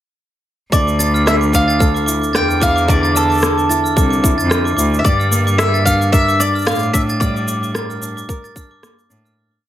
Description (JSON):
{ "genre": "folktronica", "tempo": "111 BPM", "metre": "4/4", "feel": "swing 56% on 16ths", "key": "D minor", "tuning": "A4 = 440 Hz", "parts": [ { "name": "mandolin", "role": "melody", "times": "0.7-9.1 s", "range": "A4 to G5", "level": "-19 LUFS", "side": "equal", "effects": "vintage 12-bit sampler grit, tape echo" }, { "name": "glockenspiel with hard plastic mallets", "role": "second line", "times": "0.7-9.4 s", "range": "D6 to A6", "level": "-22 LUFS", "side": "right 2 dB", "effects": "ping-pong delay" }, { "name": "flamenco guitar", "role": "arpeggios", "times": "0.7-9.7 s", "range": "G2 to Bb4", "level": "-21 LUFS", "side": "left 1 dB", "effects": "low-pass filter" }, { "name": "clear cello", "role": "bass", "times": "0.7-9.3 s", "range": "C2 to A2", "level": "-18 LUFS", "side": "equal", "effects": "none" }, { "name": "electronic kick drum", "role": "drums", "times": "0.7-8.7 s", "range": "none", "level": "-17 LUFS", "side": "equal", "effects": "overdrive" }, { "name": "electronic shaker and rim click", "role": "drums", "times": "0.7-9.4 s", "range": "none", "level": "-21 LUFS", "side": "right 1 dB", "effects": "overdrive" } ], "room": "moderate studio reverb, RT60 0.6 s", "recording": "none", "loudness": "-13 LUFS", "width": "side -12 dB against mid", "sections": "0.7-9.4 groove", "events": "filter sweep on nylon-string guitar 0.7-9.4; fade-out 6.5-9.4", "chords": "0.7 Dmadd9; 5.0 Gm7" }